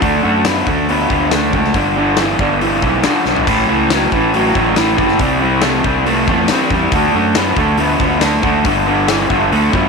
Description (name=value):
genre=classic rock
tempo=139 BPM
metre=4/4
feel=straight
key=unclear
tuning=A4 = 441 Hz
part: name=raw garage guitar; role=riff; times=0.0-9.9 s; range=G2 to B3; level=-13 LUFS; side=equal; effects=overdrive
part: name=fuzz fingered electric bass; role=bass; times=0.0-9.9 s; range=F#1 to F#2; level=-21 LUFS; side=right 1 dB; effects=overdrive
part: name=huge arena drum kit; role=drums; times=0.0-9.8 s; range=hi-hat, kick drum, snare drum, splash cymbal, toms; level=-20 LUFS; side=left 3 dB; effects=none
room=moderate plate reverb, RT60 0.9 s, small room reverb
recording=1960s-style stereo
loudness=-12 LUFS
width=side -4 dB against mid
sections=0.0-9.9 A section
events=drum fill 3.3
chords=0.0 D; 1.8 G; 3.5 A; 5.2 C; 6.9 D; 8.7 G5